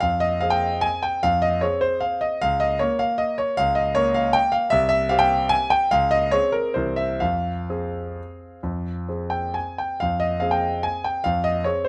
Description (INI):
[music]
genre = classical, piano waltz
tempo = 122-163 BPM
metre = 3/4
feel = rubato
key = F minor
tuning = A4 = 441 Hz
[part]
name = clear concert grand piano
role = solo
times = 0.0-11.9 s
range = C2 to Ab5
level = -22 LUFS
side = equal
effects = none
[sound]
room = light reverb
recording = close, detailed microphones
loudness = -22 LUFS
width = mono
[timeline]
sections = 0.0-10.0 A section; 10.0-11.9 A section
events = none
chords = 0.0 Fm; 2.4 Bbm/Db; 4.7 C5; 5.9 Db5; 6.7 C7; 7.2 Fm